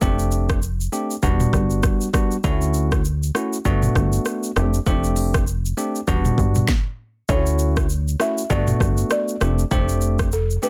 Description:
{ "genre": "afrobeats", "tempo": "99 BPM", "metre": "4/4", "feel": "swing 58% on 16ths", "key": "D major", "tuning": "A4 = 441 Hz", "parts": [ { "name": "bell-like tine electric piano", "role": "accompaniment", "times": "0.0-10.7 s", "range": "G3 to G4", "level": "-26 LUFS", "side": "equal", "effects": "none" }, { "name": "plucky analog bass", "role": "bass", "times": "0.0-10.6 s", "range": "E1 to D2", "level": "-23 LUFS", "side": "equal", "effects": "none" }, { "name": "afro-pop drum kit", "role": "drums", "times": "0.0-10.7 s", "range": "hi-hat, kick drum, rim click, shaker, snare drum, toms", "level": "-24 LUFS", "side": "equal", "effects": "none" }, { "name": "buzzing marimba with soft mallets", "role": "melody", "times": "7.3-10.7 s", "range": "A4 to E5", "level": "-28 LUFS", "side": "equal", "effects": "delay" } ], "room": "little or no reverb", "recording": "dense, heavily limited modern master", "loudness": "-21 LUFS", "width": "mono", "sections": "0.0-7.3 A section; 7.3-10.7 B section", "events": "stop 6.7-7.3", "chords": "0.0 F6; 1.2 Em7; 2.4 Dmaj7; 3.7 Gmaj7; 4.6 F6; 6.1 Em7; 7.3 Dmaj7; 8.5 Gmaj7; 9.4 F6" }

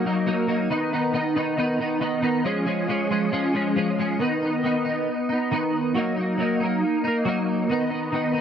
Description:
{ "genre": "rock", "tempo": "137 BPM", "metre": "4/4", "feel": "straight", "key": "unclear", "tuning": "A4 = 439 Hz", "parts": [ { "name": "twelve-string electric guitar", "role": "solo", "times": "0.0-8.4 s", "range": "D#3 to D#4", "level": "-21 LUFS", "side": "equal", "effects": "ensemble chorus" } ], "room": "digital ambience", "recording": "dry, close 1970s-style studio recording", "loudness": "-21 LUFS", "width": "side -8 dB against mid", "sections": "0.0-4.2 A section; 4.2-8.4 B section", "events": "none", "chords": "0.0 D#m; 0.7 B/D#; 2.5 C#; 4.2 B/D#; 6.0 D#m; 7.7 B/D#" }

